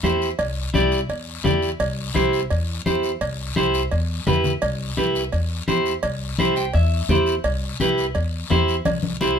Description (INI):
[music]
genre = latin, cumbia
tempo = 170 BPM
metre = 4/4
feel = straight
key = C major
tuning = A4 = 439 Hz
[part]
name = clean electric guitar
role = accompaniment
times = 0.0-9.4 s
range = E4 to G5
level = -21 LUFS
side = right 1 dB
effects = none
[part]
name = upright bass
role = bass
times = 0.0-9.4 s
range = C2 to E2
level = -24 LUFS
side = equal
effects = none
[part]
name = congas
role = percussion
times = 0.0-9.3 s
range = none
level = -26 LUFS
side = left 4 dB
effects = none
[part]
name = guiro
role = percussion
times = 0.0-9.4 s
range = none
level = -34 LUFS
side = left 7 dB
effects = none
[part]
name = timbales and cowbell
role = percussion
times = 0.0-9.0 s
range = none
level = -27 LUFS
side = right 2 dB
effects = none
[sound]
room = light reverb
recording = minimal, uncompressed stereo recording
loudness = -19 LUFS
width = side -7 dB against mid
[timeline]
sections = 0.0-9.4 A section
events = clean electric guitar fill 6.4-7.4; drum fill 8.9-9.4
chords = 0.0 C